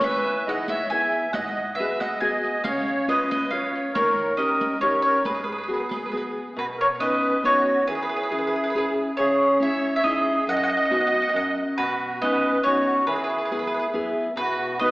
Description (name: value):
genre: italian folk, Italian serenade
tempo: 138 BPM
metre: 3/4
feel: straight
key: G# minor, B major from 6.6 s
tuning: A4 = 440 Hz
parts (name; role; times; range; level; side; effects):
- mandolin; melody; 0.0-14.9 s; B4 to G#5; -24 LUFS; equal; slapback echo
- musette accordion; second line; 0.0-14.9 s; F#4 to E5; -26 LUFS; right 1 dB; none
- nylon-string guitar; accompaniment; 0.0-14.9 s; F#2 to B4; -27 LUFS; equal; none
- riq; percussion; 0.0-6.1 s; none; -36 LUFS; right 1 dB; none
room: wet scoring stage reverb, RT60 1.5 s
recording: heard from further back in the room, AM radio sound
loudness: -21 LUFS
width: side -20 dB against mid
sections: 0.0-6.6 A section; 6.6-14.9 B section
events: none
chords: 0.0 Emaj7; 1.3 G#m7; 2.6 C#7; 4.0 D#7; 5.2 G#m7; 6.6 Badd9; 7.9 E6; 9.2 C#madd9; 10.5 B/F#; 11.3 N.C.; 11.8 Badd9; 13.1 E; 14.4 B